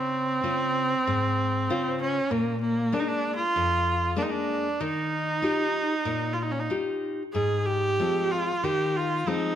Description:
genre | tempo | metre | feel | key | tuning
fado-style ballad | 96 BPM | 4/4 | rubato | Ab major | A4 = 439 Hz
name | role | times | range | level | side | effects
clear viola | melody | 0.0-9.6 s | Bb3 to Ab4 | -26 LUFS | right 2 dB | none
nylon-string guitar | accompaniment | 0.0-9.6 s | F2 to C5 | -29 LUFS | left 3 dB | none
room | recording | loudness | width
moderate recital hall reverb, RT60 1.6 s | none | -24 LUFS | side -10 dB against mid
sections
0.0-9.6 A section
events
none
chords
0.0 Dbmaj7; 2.3 Bb7; 4.8 Ebadd9; 7.3 Ab6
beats
0.44 1.06 1.69 | 2.31 2.92 3.54 4.17 | 4.79 5.42 6.05 6.70 | 7.35 7.99 8.63 9.27

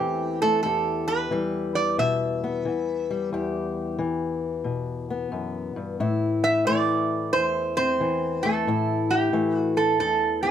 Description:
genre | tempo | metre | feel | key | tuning
acoustic country blues, solo or duo | 90 BPM | 4/4 | swing 66% on 8ths | E minor | A4 = 438 Hz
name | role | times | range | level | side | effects
metal-body resonator slide guitar | melody | 0.0-10.5 s | G4 to E5 | -24 LUFS | right 4 dB | none
fingerpicked old ladder-braced acoustic guitar | accompaniment | 0.0-10.5 s | E2 to G4 | -25 LUFS | left 4 dB | none
room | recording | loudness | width
light reverb | close, detailed microphones | -22 LUFS | side -9 dB against mid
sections
0.0-10.5 A section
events
none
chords
0.0 Am; 0.7 Em; 6.0 Am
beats
| 0.66 1.33 2.00 2.66 | 3.33 4.00 4.67 5.34 | 6.00 6.67 7.34 8.01 | 8.68 9.34 10.01

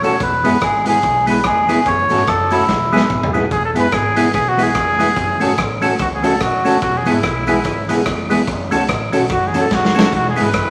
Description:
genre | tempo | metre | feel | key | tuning
ska | 145 BPM | 4/4 | swing 59% on 8ths | E major | A4 = 440 Hz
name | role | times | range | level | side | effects
melodica | melody | 0.0-3.3 s | E4 to C#5 | -18 LUFS | equal | none
semi-hollow electric guitar | accompaniment | 0.0-10.5 s | G#3 to A4 | -23 LUFS | equal | dub echo
percussive tonewheel organ | stabs | 0.0-10.5 s | G#3 to A4 | -24 LUFS | equal | chorus vibrato, slow rotary speaker
upright bass | bass | 0.0-10.7 s | D#1 to C#2 | -29 LUFS | equal | none
raw garage drum kit | drums | 0.0-10.7 s | hi-hat, kick drum, rim click, snare drum, toms | -23 LUFS | equal | dub echo
cabasa | percussion | 0.0-10.7 s | none | -47 LUFS | equal | none
clear trumpet | melody | 3.5-10.7 s | E4 to B4 | -21 LUFS | equal | none
room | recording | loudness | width
wet large studio reverb, RT60 1.1 s | vinyl crackle | -16 LUFS | mono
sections
0.0-3.5 A section; 3.5-10.7 B section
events
drum fill 2.7-3.5, 9.7-10.1; trumpet solo 3.5-10.7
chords
0.2 E; 1.9 F#m; 2.7 E; 5.2 F#m; 6.8 E; 8.5 F#m; 10.1 E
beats
| 0.21 0.62 1.03 1.45 | 1.86 2.27 2.69 3.10 | 3.51 3.93 4.34 4.75 | 5.17 5.58 5.99 6.41 | 6.82 7.23 7.64 8.06 | 8.47 8.88 9.30 9.71 | 10.12 10.54

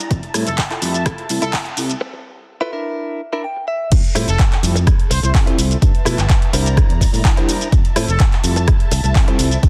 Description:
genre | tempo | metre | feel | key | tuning
filtered disco house | 126 BPM | 4/4 | straight | F major | A4 = 442 Hz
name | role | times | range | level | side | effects
dark studio violin section | sustained chords | 0.0-9.7 s | E4 to Bb5 | -33 LUFS | equal | vintage 12-bit sampler grit, sidechain pumping, low-pass filter
punchy analog drum machine | drums | 0.0-9.7 s | crash cymbal, handclaps, hi-hat, rim click, shaker | -25 LUFS | equal | sidechain pumping on hats, high-pass filter on hats, sidechain pumping on perc, high-pass filter on perc, high-pass filter on snare, sidechain pumping on cymbals, high-pass filter on cymbals, high-pass filter on room
direct-recorded clean electric guitar | riff | 0.1-9.6 s | D4 to G5 | -26 LUFS | equal | sidechain pumping, low-pass filter
modern bright fingered electric bass | bass | 0.1-9.7 s | F1 to B2 | -21 LUFS | equal | tube saturation, sidechain pumping, low-pass filter
electronic kick drum | drums | 0.1-9.7 s | none | -17 LUFS | equal | none
mellow synth brass | accompaniment | 0.3-9.5 s | F3 to E4 | -27 LUFS | equal | chorus, phaser, sidechain pumping, low-pass filter
bright trumpet section | melody | 0.5-8.2 s | A4 to C5 | -30 LUFS | equal | sidechain pumping, low-pass filter, digital delay
room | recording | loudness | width
little or no reverb | dense, heavily limited modern master, high-pass filter | -17 LUFS | mono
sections
0.0-3.9 A section; 3.9-9.7 B section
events
build-up 0.0-3.9; filter sweep 0.0-3.9; break 2.0-3.9; clean electric guitar fill 3.2-3.9; drop 3.9-9.7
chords
0.1 Fmaj7; 2.0 Esus4; 2.7 Gm6/D; 3.9 Fmaj7; 5.8 G13; 6.5 C9; 7.7 Fmaj7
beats
| 0.11 0.58 1.06 1.54 | 2.01 2.49 2.96 3.44 | 3.92 4.39 4.87 5.34 | 5.82 6.30 6.77 7.25 | 7.73 8.20 8.68 9.15 | 9.63

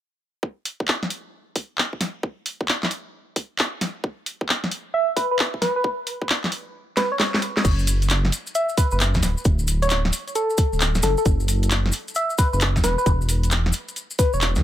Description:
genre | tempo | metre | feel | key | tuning
UK garage, two-step garage | 133 BPM | 4/4 | swing 65% on 16ths | unclear | A4 = 441 Hz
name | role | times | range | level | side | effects
electronic kick drum | drums | 0.4-14.3 s | none | -21 LUFS | equal | high-pass filter on kick, high-pass filter on room
garage drum kit | drums | 0.7-14.6 s | crash cymbal, handclaps, hi-hat, snare drum | -23 LUFS | equal | none
soft struck synth lead | melody | 4.9-14.5 s | A4 to E5 | -24 LUFS | equal | chorus, phaser, cassette tape, digital delay
dark detuned saw bass | bass | 7.6-14.6 s | D1 to E2 | -21 LUFS | equal | none
maracas | percussion | 7.7-14.6 s | none | -31 LUFS | left 2 dB | none
room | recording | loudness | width
little or no reverb | none | -20 LUFS | side -12 dB against mid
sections
0.4-7.6 A section; 7.6-14.6 B section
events
drum fill 7.0-7.6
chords
0.4 N.C.; 9.2 D5; 11.0 N.C.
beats
| 0.43 0.88 1.33 1.78 | 2.23 2.69 3.14 3.59 | 4.04 4.49 4.94 5.39 | 5.84 6.29 6.75 7.20 | 7.65 8.10 8.55 9.00 | 9.45 9.90 10.35 10.80 | 11.26 11.71 12.16 12.61 | 13.06 13.51 13.96 14.41

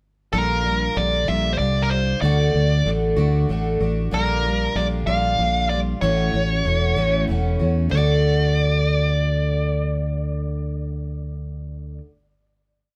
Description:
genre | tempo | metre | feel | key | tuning
folk rock and heartland rock | 63 BPM (dotted quarters) | 6/8 | straight | D major | A4 = 440 Hz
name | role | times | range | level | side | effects
nasal lead guitar with a parked wah | melody | 0.3-12.0 s | Bb4 to F5 | -26 LUFS | equal | overdrive, analog delay
picked twelve-string acoustic guitar | accompaniment | 0.3-12.1 s | A2 to F#4 | -28 LUFS | equal | none
fingered electric bass | bass | 0.3-12.0 s | E1 to E2 | -24 LUFS | equal | none
room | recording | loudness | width
moderate studio reverb, RT60 0.5 s | band playing live in one room, faint mains hum | -21 LUFS | mono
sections
0.3-7.9 pre-chorus; 7.9-11.7 final chord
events
none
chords
0.3 Bb6; 2.2 D; 4.1 Bb6; 6.0 A6; 7.9 D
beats
| 0.33 1.28 | 2.23 3.17 | 4.12 5.07 | 6.02 6.97 | 7.92 8.87 | 9.82 10.77

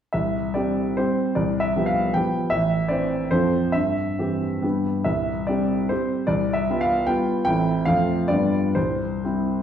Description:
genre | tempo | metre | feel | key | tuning
classical, romantic triple-time dance for piano with dotted rhythms | 120-164 BPM | 3/4 | rubato | C major | A4 = 441 Hz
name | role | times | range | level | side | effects
warm grand piano | solo | 0.1-9.6 s | A1 to G5 | -20 LUFS | equal | none
room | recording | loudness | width
wet recital hall reverb, RT60 1.2 s | heard from further back in the room | -20 LUFS | side -9 dB against mid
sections
0.1-9.6 A section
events
none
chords
0.1 C; 1.4 G7/C; 2.5 Am; 3.3 F; 3.7 C/G; 4.6 G; 5.1 C; 6.3 G7/C; 7.5 Am7; 7.9 F; 8.3 G7; 8.8 C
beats
| 0.13 0.55 0.98 | 1.36 1.75 2.13 | 2.51 2.90 3.31 | 3.74 4.18 4.64 | 5.07 5.51 5.91 | 6.29 6.69 7.09 | 7.47 7.88 8.30 | 8.76 9.25

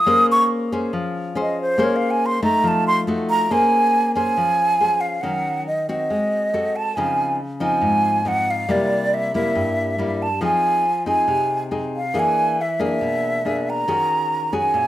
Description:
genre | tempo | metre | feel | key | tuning
bossa nova | 139 BPM | 4/4 | straight | Bb minor | A4 = 441 Hz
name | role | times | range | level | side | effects
breathy concert flute | melody | 0.0-14.9 s | C5 to Eb6 | -19 LUFS | right 1 dB | none
nylon-string guitar | accompaniment | 0.0-14.9 s | G2 to C5 | -22 LUFS | left 2 dB | none
room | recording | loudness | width
wet studio reverb, RT60 0.5 s | rough home demo mix | -18 LUFS | side -13 dB against mid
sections
0.0-3.5 A section; 3.5-14.9 B section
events
flute solo 0.0-3.5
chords
0.1 Bbm9; 2.6 F7b9; 3.5 Bbm9; 5.2 Ebm7; 6.1 Ab7b9; 7.0 Dbmaj9; 8.7 C7; 10.4 Fm7; 12.1 E7#11; 13.9 Ebm7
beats
| 0.06 0.49 0.93 1.36 | 1.79 2.22 2.65 3.08 | 3.51 3.94 4.37 4.80 | 5.24 5.67 6.10 6.53 | 6.96 7.39 7.83 8.26 | 8.69 9.12 9.55 9.98 | 10.42 10.85 11.28 11.71 | 12.14 12.58 13.01 13.44 | 13.87 14.30 14.74

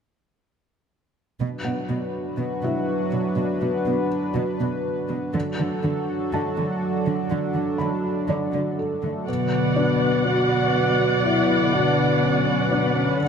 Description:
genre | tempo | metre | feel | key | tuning
cinematic | 122 BPM | 4/4 | straight | B minor | A4 = 440 Hz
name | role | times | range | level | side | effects
chorused pulse-width pad | sustained chords | 1.4-13.3 s | D3 to F#5 | -24 LUFS | right 1 dB | none
dark symphonic cello section | bass | 1.4-13.3 s | B2 to D3 | -27 LUFS | right 2 dB | none
felt-muted upright piano | texture | 1.6-13.3 s | D4 to B5 | -32 LUFS | left 2 dB | ping-pong delay
mellow French horn section | sustained chords | 9.0-13.3 s | A3 to F#4 | -24 LUFS | left 3 dB | none
dark symphonic viola section | accompaniment | 9.3-13.3 s | A4 to F#5 | -24 LUFS | equal | none
room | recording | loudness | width
moderate concert hall reverb, RT60 2.6 s | none | -20 LUFS | side -7 dB against mid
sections
1.4-9.3 A section; 9.3-13.3 B section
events
none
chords
1.4 Bm; 5.3 D; 9.3 Bm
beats
| 1.41 1.90 2.39 2.88 | 3.37 3.87 4.36 4.85 | 5.34 5.83 6.33 6.82 | 7.31 7.80 8.29 8.78 | 9.28 9.77 10.26 10.75 | 11.24 11.73 12.23 12.72 | 13.21

